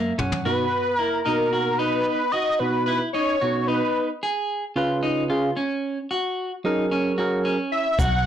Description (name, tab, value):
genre	progressive instrumental, band music in an uneven meter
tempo	223 BPM (eighths)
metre	7/8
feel	straight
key	unclear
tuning	A4 = 439 Hz
part	wide unison lead	melody	0.0-4.1, 7.7-8.3 s	A#4 to F#5	-22 LUFS	equal	none
part	overdriven tine electric piano	accompaniment	0.0-7.6 s	B2 to F#5	-24 LUFS	right 2 dB	none
part	clean electric guitar	arpeggios	0.0-8.3 s	A#3 to G#4	-26 LUFS	equal	none
part	upright bass	bass	0.0-0.4, 8.0-8.3 s	B1 to F#2	-26 LUFS	equal	none
part	jazz brush drum kit	drums	0.2-0.4, 8.0-8.1 s	hi-hat, kick drum, toms	-28 LUFS	left 1 dB	none
part	egg shaker	percussion	8.0-8.2 s	none	-41 LUFS	right 6 dB	none
room	moderate studio reverb, RT60 0.6 s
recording	blown-out, overdriven recording, overdrive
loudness	-21 LUFS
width	side -9 dB against mid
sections	0.5-8.3 A section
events	tine electric piano fill 0.0-0.5; drum fill 0.0-0.5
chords	0.5 B; 4.2 C#7; 6.1 F#add9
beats	0.19 | 0.46 0.73 1.00 1.27 1.53 1.80 2.07 | 2.34 2.61 2.88 3.15 3.42 3.69 3.96 | 4.23 4.50 4.77 5.04 5.30 5.57 5.84 | 6.11 6.38 6.65 6.91 7.18 7.45 7.72 | 7.99 8.26